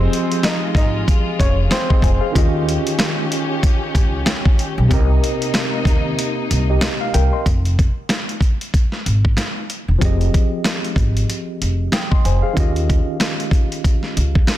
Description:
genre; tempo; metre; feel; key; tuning
hip hop, boom-bap hip-hop; 94 BPM; 4/4; swing 58% on 16ths; F minor; A4 = 439 Hz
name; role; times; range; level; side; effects
clear upright piano; melody; 0.0-2.0 s; C4 to Eb5; -25 LUFS; equal; high-pass filter, low-pass filter, ping-pong delay
tine electric piano; accompaniment; 0.0-14.6 s; C3 to Eb6; -23 LUFS; equal; overdrive, fast stereo tremolo, high-pass filter, low-pass filter
warm studio string section; sustained chords; 0.0-7.4 s; C3 to G4; -26 LUFS; left 2 dB; high-pass filter, low-pass filter
upright bass; bass; 0.0-14.4 s; E1 to Eb2; -18 LUFS; equal; none
dusty soul sampler-style drum kit; drums; 0.1-14.6 s; hi-hat, kick drum, snare drum; -17 LUFS; equal; none
room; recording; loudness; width
little or no reverb; dense, heavily limited modern master; -15 LUFS; side -13 dB against mid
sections
0.0-7.5 A section; 7.5-14.6 B section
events
kick muted 6.2-7.5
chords
0.0 Fm7; 2.4 Eb7; 4.9 Cm7; 7.5 Fm7; 12.6 Eb7

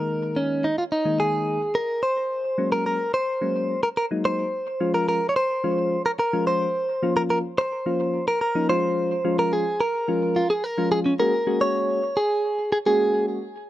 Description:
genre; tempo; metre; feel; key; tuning
pop; 108 BPM; 4/4; straight; unclear; A4 = 441 Hz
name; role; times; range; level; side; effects
direct-recorded clean electric guitar; melody; 0.0-13.2 s; Db4 to Db5; -22 LUFS; equal; tape echo
soft electric-piano-like synth keys; accompaniment; 0.0-13.4 s; Eb3 to Ab4; -25 LUFS; left 2 dB; chorus
room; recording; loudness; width
light reverb; dry, close 1970s-style studio recording; -21 LUFS; side -14 dB against mid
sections
0.0-2.3 A section; 2.3-11.2 B section; 11.2-13.7 C section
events
build-up 2.3-11.2; drop 11.2-13.7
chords
0.0 Absus2; 2.3 Gbadd9; 4.5 Db; 6.7 Bbm; 8.7 Db; 11.2 Gbadd9

